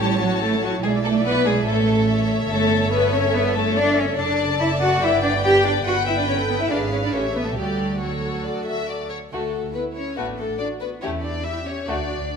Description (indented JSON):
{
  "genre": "quick classical-period movement for string orchestra",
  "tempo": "142 BPM",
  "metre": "4/4",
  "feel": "straight",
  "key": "D major",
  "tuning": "A4 = 440 Hz",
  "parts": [
    { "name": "warm chamber violin section", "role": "melody", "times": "0.0-12.4 s", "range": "A4 to A5", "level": "-29 LUFS", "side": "left 6 dB", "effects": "none" },
    { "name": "warm chamber violin section", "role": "second line", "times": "0.0-12.1 s", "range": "A3 to G5", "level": "-24 LUFS", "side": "left 5 dB", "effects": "none" },
    { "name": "dark chamber viola section", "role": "accompaniment", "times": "0.0-12.4 s", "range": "D4 to D5", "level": "-27 LUFS", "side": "right 3 dB", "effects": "none" },
    { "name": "dark chamber double bass section", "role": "bass", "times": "0.0-12.2 s", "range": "F#1 to E2", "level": "-27 LUFS", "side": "right 3 dB", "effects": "none" },
    { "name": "warm chamber cello section", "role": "bass", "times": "0.0-12.4 s", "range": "F#3 to G4", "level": "-23 LUFS", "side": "right 2 dB", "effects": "none" }
  ],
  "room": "wet recital hall reverb, RT60 1.7 s",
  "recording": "minimal, uncompressed stereo recording",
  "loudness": "-19 LUFS",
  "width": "side -6 dB against mid",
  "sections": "0.0-9.3 A section; 9.3-12.4 A section",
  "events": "none",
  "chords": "0.0 A; 0.8 E7/B; 1.7 A; 2.5 A7/G; 4.2 D/F#; 5.0 G; 5.9 Em/G; 6.7 G#dim7; 7.1 A7; 7.6 D; 11.0 A7/E"
}